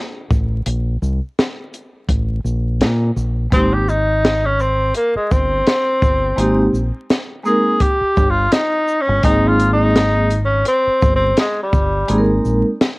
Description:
hip hop, jazz-hop; 84 BPM; 4/4; swing 57% on 16ths; Ab major; A4 = 440 Hz
deep dub fingered electric bass; bass; 0.3-12.6 s; G1 to Bb2; -19 LUFS; equal
compact cocktail drum kit; drums; 0.3-13.0 s; hi-hat, kick drum, shaker, snare drum; -18 LUFS; equal; cassette tape
breathy tenor saxophone; melody; 3.5-12.3 s; G3 to Ab4; -17 LUFS; equal; cassette tape
vibraphone with medium hard mallets; accompaniment; 3.5-12.7 s; Ab3 to Bb4; -17 LUFS; right 1 dB
small room reverb; home recording on cassette, vinyl crackle; -14 LUFS; side -26 dB against mid
0.0-3.5 A section; 3.5-13.0 B section
tenor saxophone solo 3.5-13.0
0.0 Bbmaj7(no3); 3.5 Abmaj9
| 0.67 1.38 2.09 2.81 | 3.52 4.24 4.95 5.67 | 6.38 7.09 7.81 8.52 | 9.24 9.95 10.66 11.38 | 12.09 12.81

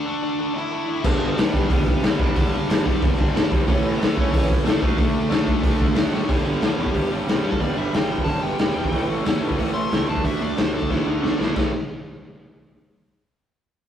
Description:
punk rock; 183 BPM; 4/4; straight; A4 = 442 Hz
dark smooth lead guitar; melody; 0.0-11.6 s; A3 to C6; -28 LUFS; equal; overdrive
biting overdriven guitar; riff; 0.0-11.7 s; G2 to D4; -29 LUFS; left 4 dB
distorted electric guitar; riff; 1.0-6.1 s; G2 to D4; -32 LUFS; left 1 dB
fuzz picked electric bass; bass; 1.0-11.7 s; E1 to A2; -30 LUFS; equal; overdrive
raw garage drum kit; drums; 1.0-11.6 s; crash cymbal, hi-hat, kick drum, snare drum; -21 LUFS; equal
raw garage guitar; riff; 1.1-11.7 s; G2 to D4; -26 LUFS; right 5 dB; overdrive
light reverb; rough rehearsal-room recording, warm saturation; -19 LUFS; side -10 dB against mid
0.0-6.3 A section; 6.3-11.6 B section; 11.6-12.9 C section
drum fill 6.1, 10.9-11.6; lead electric guitar solo 6.3-11.6
0.0 D5; 1.0 G; 3.7 A; 4.8 D5; 6.3 G5; 8.9 A5; 10.1 D5; 11.6 A5
0.06 0.39 0.72 | 1.05 1.38 1.70 2.03 | 2.36 2.69 3.01 3.34 | 3.67 3.99 4.32 4.65 | 4.98 5.30 5.63 5.96 | 6.29 6.61 6.94 7.27 | 7.60 7.93 8.26 8.59 | 8.92 9.25 9.58 9.91 | 10.24 10.57 10.90 11.23 | 11.56

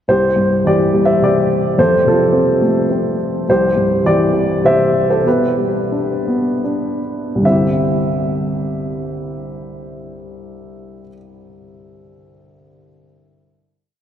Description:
acoustic folk-pop ballad; 71-107 BPM; 3/4; straight; C major; A4 = 440 Hz
dark upright piano; solo; 0.1-14.0 s; C2 to E5; -14 LUFS; equal
wet cathedral reverb, RT60 5.5 s; in a vast, echoing space; -13 LUFS; side -9 dB against mid
0.1-7.4 verse; 7.4-12.5 final chord
slowing down 3.5-7.4
0.1 Cadd9; 1.8 F; 3.5 Cadd9; 5.3 G/B; 7.4 Cadd9
| 0.09 0.66 1.23 | 1.79 2.36 2.92 | 3.48 4.05 4.64 | 5.26 5.92 6.64 | 7.44 8.28 9.12 | 9.96 10.80 11.64

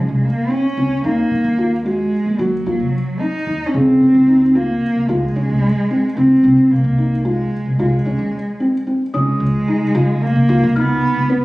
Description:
contemporary instrumental, chamber music in an uneven meter; 222 BPM (eighths); 5/8; straight; A4 = 441 Hz
dark cello; melody; 0.0-11.4 s; Gb3 to Eb4; -16 LUFS; right 1 dB
felt-muted upright piano; arpeggios; 0.0-11.4 s; Db3 to Gb4; -20 LUFS; left 1 dB
upright bass; bass; 0.0-11.4 s; C2 to Eb3; -20 LUFS; equal
small celesta; texture; 9.1-11.4 s; Eb6 to F6; -26 LUFS; equal
light reverb; recorded on a phone in the room, studio reverb; -14 LUFS; side -20 dB against mid
0.0-9.1 A section; 9.1-11.4 B section
0.0 Dbmaj7(no3); 1.0 Ebm; 3.7 Fm; 9.1 Db69; 10.5 Cb/Db
0.23 0.51 0.77 | 1.04 1.31 1.58 1.85 2.12 | 2.39 2.66 2.93 3.20 3.47 | 3.74 4.01 4.28 4.55 4.82 | 5.09 5.37 5.63 5.91 6.17 | 6.45 6.71 6.99 7.25 7.53 | 7.79 8.06 8.34 8.61 8.88 | 9.14 9.41 9.68 9.95 10.22 | 10.49 10.76 11.03 11.30

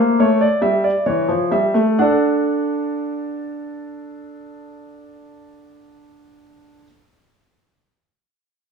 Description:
classical, baroque-style two-part invention for grand piano; 62-72 BPM; 4/4; straight; A4 = 440 Hz
dark concert grand piano; solo; 0.0-6.8 s; E3 to F#5; -17 LUFS; equal
moderate stone room reverb, RT60 1.1 s; heard from further back in the room, small room ambience; -16 LUFS; side -6 dB against mid
0.0-2.0 A section; 2.0-5.9 B section
slowing down 0.0-2.0
0.2 A7; 2.0 D
0.19 1.06 | 1.99 2.96 3.93 4.89

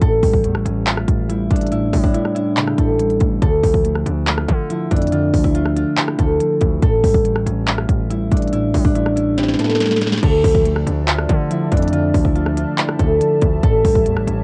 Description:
hip hop, trap; 141 BPM; 4/4; half-time; D harmonic minor; A4 = 443 Hz
concert harp; melody; 0.0-14.4 s; D4 to A4; -22 LUFS; equal; low-pass filter, cassette tape
mellow electric guitar; accompaniment; 0.0-14.4 s; A2 to E5; -24 LUFS; equal; low-pass filter, cassette tape
distorted 808-style bass; bass; 0.0-14.4 s; A1 to D3; -25 LUFS; equal; distortion
trap drum kit; drums; 0.0-14.4 s; crash cymbal, handclaps, hi-hat, kick drum, rim click, snare drum; -20 LUFS; equal; cassette tape
dark analog pad; sustained chords; 10.7-14.4 s; F3 to A5; -32 LUFS; equal; chorus, cassette tape
light reverb; home recording on cassette, nothing above 10.4 kHz; -17 LUFS; mono
0.0-10.2 A section; 10.2-14.4 B section
drum fill 9.4-10.2
0.0 A7; 3.4 Dmadd9; 6.8 A7; 10.2 Dmadd9; 13.6 A7
| 0.02 0.44 0.87 1.29 | 1.72 2.14 2.57 3.00 | 3.42 3.85 4.27 4.70 | 5.12 5.55 5.97 6.40 | 6.83 7.25 7.68 8.10 | 8.53 8.95 9.38 9.80 | 10.23 10.65 11.08 11.51 | 11.93 12.36 12.78 13.21 | 13.63 14.06

